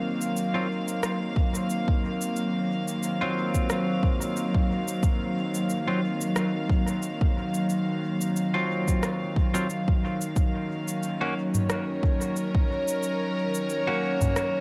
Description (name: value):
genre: ambient dub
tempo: 90 BPM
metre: 4/4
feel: swing 55% on 16ths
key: Eb dorian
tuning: A4 = 440 Hz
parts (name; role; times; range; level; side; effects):
- dark studio string section; sustained chords; 0.0-14.6 s; Eb3 to F5; -30 LUFS; equal; none
- organic electronic drum kit; drums; 0.2-14.5 s; cabasa, rim click, toms; -36 LUFS; equal; dub echo
- semi-hollow electric guitar; stabs; 0.5-14.6 s; Gb3 to Gb4; -34 LUFS; equal; dub echo
- electronic kick drum; drums; 1.4-14.3 s; none; -26 LUFS; equal; overdrive
room: moderate spring reverb, RT60 1.4 s, digital ambience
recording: none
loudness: -27 LUFS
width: mono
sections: 0.0-14.6 A section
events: none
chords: 0.0 Ebm69; 10.4 Gb/Eb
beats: 0.36 1.03 1.70 | 2.36 3.03 3.70 4.36 | 5.03 5.70 6.36 7.03 | 7.70 8.36 9.03 9.70 | 10.36 11.03 11.70 12.36 | 13.03 13.70 14.36